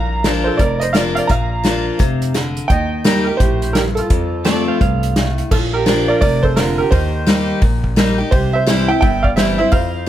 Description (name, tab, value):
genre	honky-tonk and classic country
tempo	171 BPM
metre	4/4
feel	swing 62% on 8ths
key	Bb major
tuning	A4 = 437 Hz
part	bright upright piano	melody	0.0-10.1 s	F4 to Bb5	-19 LUFS	right 4 dB	none
part	picked steel-string acoustic guitar	accompaniment	0.0-10.1 s	F2 to G4	-19 LUFS	left 2 dB	none
part	upright bass	bass	0.0-10.1 s	F1 to F2	-21 LUFS	equal	none
part	unplugged drum kit	drums	0.2-9.8 s	crash cymbal, hi-hat, kick drum, snare drum	-18 LUFS	equal	none
part	clean electric guitar	second line	4.5-5.4 s	A4 to F5	-23 LUFS	right 8 dB	tape echo
room	little or no reverb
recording	none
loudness	-13 LUFS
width	side -12 dB against mid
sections	0.0-5.5 A section; 5.5-10.1 B section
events	none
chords	0.0 Bb; 2.7 Eb; 4.1 F; 5.5 Bb; 6.9 Eb; 8.3 C